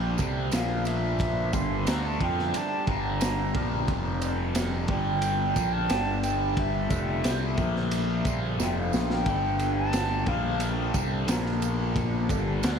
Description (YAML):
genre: psychedelic rock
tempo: 89 BPM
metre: 4/4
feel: straight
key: G dorian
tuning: A4 = 440 Hz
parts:
  - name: hand-pumped harmonium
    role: sustained chords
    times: 0.0-12.8 s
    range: F3 to D5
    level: -36 LUFS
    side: right 4 dB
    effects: none
  - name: fuzz guitar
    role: riff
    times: 0.0-12.8 s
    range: F2 to F4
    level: -31 LUFS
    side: left 3 dB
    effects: distortion, phaser
  - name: fuzz picked electric bass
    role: bass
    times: 0.0-12.8 s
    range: F1 to F2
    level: -30 LUFS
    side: equal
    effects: overdrive
  - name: tanpura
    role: drone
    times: 0.0-12.8 s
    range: G2 to G3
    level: -40 LUFS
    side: right 1 dB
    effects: none
  - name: crunchy breakbeat drum kit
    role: drums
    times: 0.2-12.8 s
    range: kick drum, ride cymbal, snare drum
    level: -31 LUFS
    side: equal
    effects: none
  - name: tambourine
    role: percussion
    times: 0.2-12.8 s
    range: none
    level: -44 LUFS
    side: right 14 dB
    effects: none
  - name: mellow concert flute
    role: melody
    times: 0.5-10.6 s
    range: E5 to C6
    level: -32 LUFS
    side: equal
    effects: tape echo
room: wet huge ambient reverb, RT60 8.2 s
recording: dreamy mix soaked in reverb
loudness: -24 LUFS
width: side -7 dB against mid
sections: 0.0-12.8 A section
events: flute solo 0.0-12.8; drum fill 8.6-9.3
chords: 0.2 Gsus2; 0.5 Bb5; 1.5 Gmadd9; 3.9 Fsus2; 4.9 G5; 5.6 Fadd9; 5.9 G5; 6.9 Fadd9; 7.6 Bb5; 8.3 Fadd9; 9.3 Gsus2; 10.3 Bb5; 10.9 Gsus2; 11.3 Bb5